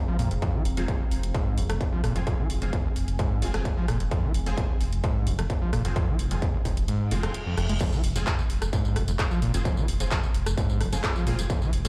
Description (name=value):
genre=driving peak-time techno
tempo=130 BPM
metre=4/4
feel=straight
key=F minor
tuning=A4 = 439 Hz
part: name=deep dark ambient pad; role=texture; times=0.0-7.8 s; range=C4 to C6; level=-42 LUFS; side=equal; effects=chorus, built-in reverb, sidechain pumping
part: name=screaming distorted acid line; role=riff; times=0.1-11.9 s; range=Eb2 to Ab3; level=-33 LUFS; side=equal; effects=distortion, chorus, sidechain pumping, digital delay
part: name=dark detuned saw bass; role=bass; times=0.2-11.9 s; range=Eb1 to F2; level=-31 LUFS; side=equal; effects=sidechain pumping
part: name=techno drum kit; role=drums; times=0.2-11.9 s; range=crash cymbal, handclaps, hi-hat, rim click, tambourine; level=-37 LUFS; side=equal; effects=overdrive, sidechain pumping on hats, sidechain pumping on cymbals, sidechain pumping on perc
part: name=electronic kick drum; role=drums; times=0.4-11.6 s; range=none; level=-29 LUFS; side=equal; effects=distortion, overdrive
part: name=rave stab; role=stabs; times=0.8-11.9 s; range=C4 to Ab4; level=-40 LUFS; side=equal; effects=chorus, built-in reverb, phaser, sidechain pumping, digital delay
part: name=reverse cymbal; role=sound effects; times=7.1-7.8 s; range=none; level=-41 LUFS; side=equal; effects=none
room=light reverb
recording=played on a big sound system in a bare room, large studio reverb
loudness=-26 LUFS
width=mono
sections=0.0-7.8 A section; 7.8-11.9 B section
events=kick drops out 6.9-7.8; reverse cymbal 7.1-7.8; drop 7.8-11.9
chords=0.0 Fm